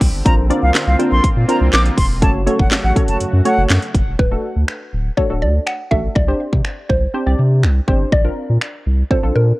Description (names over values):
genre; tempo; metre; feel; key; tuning
dance-pop; 122 BPM; 4/4; straight; unclear; A4 = 442 Hz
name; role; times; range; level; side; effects
wavetable chord stab; accompaniment; 0.0-9.6 s; A3 to D5; -21 LUFS; equal; sidechain pumping
sweeping resonant pad; sustained chords; 0.0-4.2 s; C#3 to G4; -24 LUFS; right 1 dB; chorus, sidechain pumping
saturated sub bass; bass; 0.0-9.5 s; D1 to C3; -16 LUFS; equal; sidechain pumping
house drum kit; drums; 0.0-9.2 s; finger snaps, handclaps, hi-hat, kick drum, snare drum; -17 LUFS; equal; none
reedy concert flute; melody; 0.3-3.6 s; F5 to D6; -21 LUFS; equal; sidechain pumping, tape echo
mallet-like synth pluck; melody; 4.2-9.6 s; Bb4 to F#5; -22 LUFS; equal; chorus, phaser
room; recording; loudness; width
little or no reverb; worn, warbling old tape, cassette tape, warbly pitch drift; -14 LUFS; side -20 dB against mid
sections
0.0-4.2 A section; 4.2-9.6 B section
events
drop 0.0-4.2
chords
0.3 Bbadd9; 2.2 F#m; 4.2 D; 6.2 Csus2; 8.1 Bbadd9